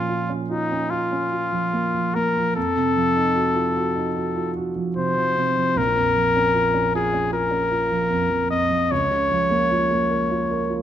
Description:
classical, romantic duo for trumpet and grand piano; 75 BPM; 4/4; rubato; Bb minor; A4 = 439 Hz
clear trumpet; melody; 0.0-10.8 s; Eb4 to Eb5; -21 LUFS; left 2 dB
warm grand piano; accompaniment; 0.0-10.8 s; Bb1 to Bb4; -23 LUFS; right 3 dB
moderate recital hall reverb, RT60 1.7 s; close, detailed microphones; -19 LUFS; side -10 dB against mid
0.0-10.8 A section
0.0 Bbm; 2.6 F7b9; 5.8 Bbm; 8.9 Bbm/Db

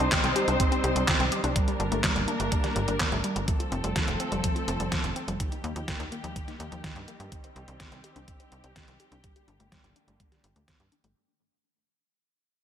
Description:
italo disco; 125 BPM; 4/4; straight; G minor; A4 = 440 Hz
muted studio string section; sustained chords; 0.0-11.1 s; D3 to C5; -32 LUFS; equal; low-pass filter
analog pluck; arpeggios; 0.0-11.2 s; G2 to C5; -33 LUFS; left 1 dB; chorus, digital delay
tight sequencer bass; bass; 0.0-11.1 s; F1 to G2; -32 LUFS; equal
detuned 8-bit digital drum machine; drums; 0.0-11.1 s; handclaps, hi-hat, snare drum; -30 LUFS; equal; gated reverb
electronic kick drum; drums; 0.1-10.8 s; -30 LUFS; equal
moderate plate reverb, RT60 2.1 s; bright 1980s-style digital production; -25 LUFS; side -9 dB against mid
0.0-11.2 A section
fade-out 0.0-11.2; filter sweep on synth arpeggio sound 0.0-11.2
0.0 Cm; 1.6 Gm; 3.5 F; 5.4 Eb; 7.3 Cm; 9.2 Gm

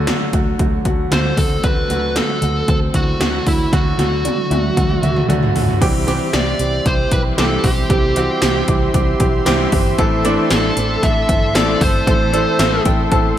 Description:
1980s-style pop; 115 BPM; 4/4; straight; A4 = 437 Hz
warm concert grand piano; accompaniment; 0.0-13.4 s; D3 to A4; -19 LUFS; right 1 dB; slapback echo
vintage muted fingered electric bass; bass; 0.0-13.3 s; G1 to D2; -22 LUFS; equal
80s electronic pad drums; drums; 0.1-13.2 s; crash cymbal, hi-hat, kick drum, snare drum, tambourine, toms; -18 LUFS; equal; gated reverb on snare and toms, overdrive
fuzz lead guitar; melody; 1.1-12.8 s; E4 to E5; -21 LUFS; right 1 dB; distortion, digital delay
soft synth bell; second line; 4.2-5.8, 12.3-13.4 s; D5 to A5; -27 LUFS; right 1 dB; chorus, digital delay, slapback echo
brassy analog pad; sustained chords; 5.8-13.4 s; A4 to C6; -26 LUFS; left 2 dB; chorus
moderate lush hall reverb, RT60 2.8 s; big arena sound; -14 LUFS; side -11 dB against mid
0.0-5.8 A section; 5.8-13.4 B section
drum fill 3.7-5.8
0.0 D; 5.8 C; 10.0 Am

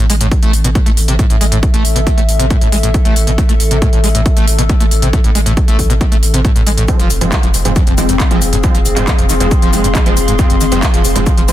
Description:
driving peak-time techno; 137 BPM; 4/4; straight; A harmonic minor; A4 = 438 Hz
screaming distorted acid line; riff; 0.0-11.4 s; F2 to A3; -19 LUFS; equal; distortion, lush chorus, sidechain pumping, ping-pong delay
saturated sub bass; bass; 0.0-11.5 s; F1 to A1; -16 LUFS; equal; overdrive, sidechain pumping, low-pass filter
warbly tape-like pad; texture; 1.0-11.5 s; C4 to C6; -20 LUFS; left 4 dB; chorus, built-in reverb, phaser, sidechain pumping
techno drum kit; drums; 0.1-11.5 s; handclaps, hi-hat, shaker; -20 LUFS; equal; overdrive, sidechain pumping on hats, sidechain pumping on perc
electronic kick drum; drums; 0.3-11.4 s; -12 LUFS; equal; overdrive
rave stab; stabs; 6.9-11.5 s; F3 to C4; -20 LUFS; right 3 dB; chorus, built-in reverb, sidechain pumping, ping-pong delay
little or no reverb; dense, heavily limited modern master; -10 LUFS; side -13 dB against mid
0.0-11.5 A section
0.0 A5; 6.9 Fm

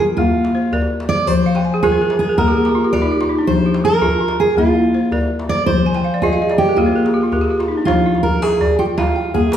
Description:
west african traditional, West African string and xylophone music; 109 BPM (dotted quarters); 12/8; straight; F dorian; A4 = 440 Hz
fingerpicked steel-string acoustic guitar; melody; 0.0-9.6 s; F4 to D5; -17 LUFS; right 3 dB
balafon; arpeggios; 0.0-9.6 s; F3 to Ab5; -17 LUFS; left 2 dB
djembe; percussion; 0.1-9.6 s; -23 LUFS; left 1 dB
wet recital hall reverb, RT60 1.3 s; heard from further back in the room; -14 LUFS; side -10 dB against mid
0.0-7.9 A section; 7.9-9.6 B section
balafon fill 1.5-3.5, 5.9-7.9
0.2 Bb; 1.3 Fm; 2.4 N.C.; 3.5 Fm; 4.6 Bb; 5.7 Fm; 6.8 N.C.; 7.9 Fm; 9.0 Bb

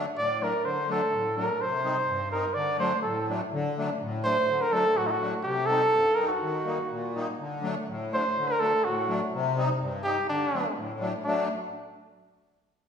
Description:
klezmer; 124 BPM; 2/4; straight; D phrygian dominant; A4 = 440 Hz
musette accordion; accompaniment; 0.0-11.5 s; G2 to Eb4; -30 LUFS; left 2 dB
warm cornet; melody; 0.2-11.5 s; D4 to D5; -26 LUFS; right 1 dB
wet recital hall reverb, RT60 1.5 s; recorded in a church or concert hall; -25 LUFS; side -7 dB against mid
0.0-3.5 A section; 3.5-11.3 B section
cornet solo 0.0-3.5
0.0 D; 1.6 Cm; 2.6 D; 5.5 Cm; 6.4 Eb; 7.4 D; 9.3 Cm; 10.3 D

